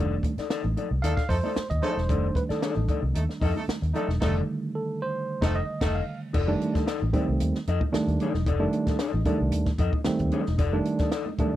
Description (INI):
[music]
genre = funk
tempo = 113 BPM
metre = 4/4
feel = straight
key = F mixolydian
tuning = A4 = 440 Hz
[part]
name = warm horn section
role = second line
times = 0.0-6.0 s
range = A3 to A4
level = -34 LUFS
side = right 4 dB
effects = none
[part]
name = mellow electric guitar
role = accompaniment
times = 0.0-11.6 s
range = Eb4 to Eb5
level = -32 LUFS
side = left 8 dB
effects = none
[part]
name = mellow tine electric piano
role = stabs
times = 0.0-11.6 s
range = D3 to F5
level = -28 LUFS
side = right 3 dB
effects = none
[part]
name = vintage muted fingered electric bass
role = bass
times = 0.0-11.4 s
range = E1 to F2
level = -27 LUFS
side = equal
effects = none
[part]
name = compact cocktail drum kit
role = drums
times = 0.2-11.5 s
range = crash cymbal, hi-hat, kick drum, snare drum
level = -29 LUFS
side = equal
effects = none
[part]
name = congas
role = percussion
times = 0.2-11.5 s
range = none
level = -38 LUFS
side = right 6 dB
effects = none
[sound]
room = small room ambience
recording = dry, close 1970s-style studio recording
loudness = -24 LUFS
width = side -13 dB against mid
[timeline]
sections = 0.0-6.3 A section; 6.3-11.6 B section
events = tine electric piano solo 0.0-6.3; band accent 4.2-6.3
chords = 0.0 F13